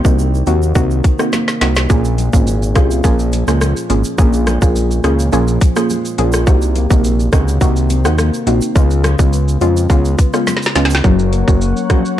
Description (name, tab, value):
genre	dancehall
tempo	105 BPM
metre	4/4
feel	straight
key	Bb minor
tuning	A4 = 439 Hz
part	soft round pluck	accompaniment	0.0-12.2 s	Gb3 to Ab4	-18 LUFS	right 1 dB	chorus
part	nylon-string guitar	arpeggios	0.0-12.2 s	Bb2 to Gb4	-21 LUFS	left 3 dB	none
part	fat analog bass	bass	0.0-12.0 s	Gb1 to F2	-15 LUFS	equal	none
part	island pop drum kit	drums	0.0-12.2 s	hi-hat, kick drum, rim click, shaker, snare drum	-15 LUFS	equal	overdrive
part	tube shaker	percussion	0.0-11.0 s	none	-33 LUFS	right 7 dB	none
part	warm analog pad	sustained chords	11.0-12.2 s	Bb4 to Db6	-25 LUFS	left 1 dB	lush chorus, sidechain pumping
room	digital ambience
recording	dark, warm production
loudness	-11 LUFS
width	side -12 dB against mid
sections	0.0-11.0 A section; 11.0-12.2 B section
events	drum fill 1.3-1.9, 10.5-11.0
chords	0.0 Cm7b5; 1.9 Bbm7; 6.5 Cm7b5; 8.8 Db7; 11.0 Gb